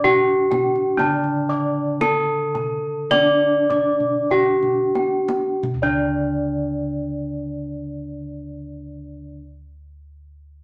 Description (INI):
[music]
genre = Javanese gamelan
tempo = 44-66 BPM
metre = 4/4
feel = straight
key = unclear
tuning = A4 = 438 Hz
[part]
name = gamelan-type bronze metallophone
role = melody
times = 0.0-9.4 s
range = D4 to D5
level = -22 LUFS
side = equal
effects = none
[part]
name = gamelan-type bronze metallophone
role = accompaniment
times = 0.0-9.4 s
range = D3 to D4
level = -31 LUFS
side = equal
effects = none
[part]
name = gamelan-type bossed gongs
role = arpeggios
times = 0.0-9.4 s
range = D5 to D6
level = -32 LUFS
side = equal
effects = none
[part]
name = gamelan-type bronze metallophone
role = arpeggios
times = 0.0-9.4 s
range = D5 to D6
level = -33 LUFS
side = equal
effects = none
[part]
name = gamelan-type bossed gongs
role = bass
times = 0.0-9.3 s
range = D2 to E4+30c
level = -39 LUFS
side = equal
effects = none
[part]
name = kendang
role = percussion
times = 0.0-6.3 s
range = none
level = -33 LUFS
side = equal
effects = none
[sound]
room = wet studio reverb, RT60 0.8 s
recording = none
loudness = -20 LUFS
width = mono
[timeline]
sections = 0.0-5.6 A section; 5.6-10.6 B section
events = slowing down 0.0-5.6; drum fill 4.0-5.6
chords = none